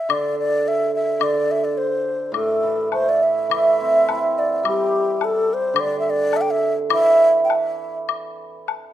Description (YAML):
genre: chinese traditional, Chinese chamber ensemble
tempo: 100-109 BPM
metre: 2/4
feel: rubato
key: unclear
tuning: A4 = 440 Hz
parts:
  - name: mellow xiao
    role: melody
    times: 0.0-8.0 s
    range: G4 to G5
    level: -20 LUFS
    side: left 1 dB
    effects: none
  - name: hammered dulcimer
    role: accompaniment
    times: 0.1-8.7 s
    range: A2 to E4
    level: -21 LUFS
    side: right 3 dB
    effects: none
  - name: woodblock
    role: percussion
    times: 0.1-8.8 s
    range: none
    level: -24 LUFS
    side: left 9 dB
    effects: none
room: light reverb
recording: close, detailed microphones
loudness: -17 LUFS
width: side -12 dB against mid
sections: 0.0-3.5 A section; 3.5-8.9 B section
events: none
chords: none